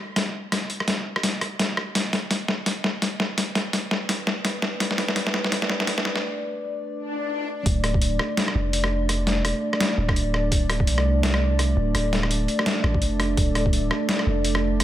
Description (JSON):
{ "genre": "half-time drum and bass", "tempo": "168 BPM", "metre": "4/4", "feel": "swing 59% on 16ths, half-time", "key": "D dorian", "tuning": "A4 = 440 Hz", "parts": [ { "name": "dark analog pad", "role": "sustained chords", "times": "3.5-14.8 s", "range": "A3 to D5", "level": "-27 LUFS", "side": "right 1 dB", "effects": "chorus, sidechain pumping" }, { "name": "boom bap sampler-style drum kit", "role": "drums", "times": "0.2-14.8 s", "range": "hi-hat, rim click, snare drum", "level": "-24 LUFS", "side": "left 1 dB", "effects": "overdrive" }, { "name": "swell", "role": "sound effects", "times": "7.0-7.7 s", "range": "none", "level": "-32 LUFS", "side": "left 4 dB", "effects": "none" }, { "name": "long sustained 808-style bass", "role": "bass", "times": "7.7-14.8 s", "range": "D1 to C2", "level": "-24 LUFS", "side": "equal", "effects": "none" }, { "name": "electronic kick drum", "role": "drums", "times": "7.7-13.7 s", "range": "none", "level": "-22 LUFS", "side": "equal", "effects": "overdrive" } ], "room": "light reverb, digital ambience", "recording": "high-pass filter", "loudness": "-21 LUFS", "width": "side -12 dB against mid", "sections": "0.0-7.7 A section; 7.7-14.8 B section", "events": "build-up 0.0-7.7; drum fill 0.0-6.2; filter sweep on analog synth pad 0.0-7.7; break 6.2-7.7; swell 7.0-7.7; drop 7.7-14.8", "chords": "0.0 D5" }